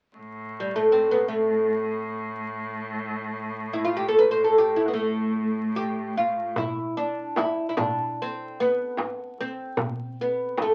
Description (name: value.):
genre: Turkish makam ensemble.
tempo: free time.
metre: none.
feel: none.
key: A makam nihavent.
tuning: A4 = 440 Hz.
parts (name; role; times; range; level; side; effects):
bright cello; drone; 0.2-6.7 s; A2; -36 LUFS; equal; none.
oud; melody; 0.6-10.7 s; G3 to C5; -25 LUFS; equal; none.
darbuka; percussion; 6.6-10.7 s; none; -33 LUFS; equal; none.
frame drum; percussion; 6.6-10.7 s; none; -34 LUFS; equal; none.
room: wet small room reverb, RT60 0.5 s.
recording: very old 78 rpm record, vinyl crackle.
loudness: -26 LUFS.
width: mono.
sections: 0.2-6.6 A section; 6.6-10.7 B section.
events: none.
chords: none.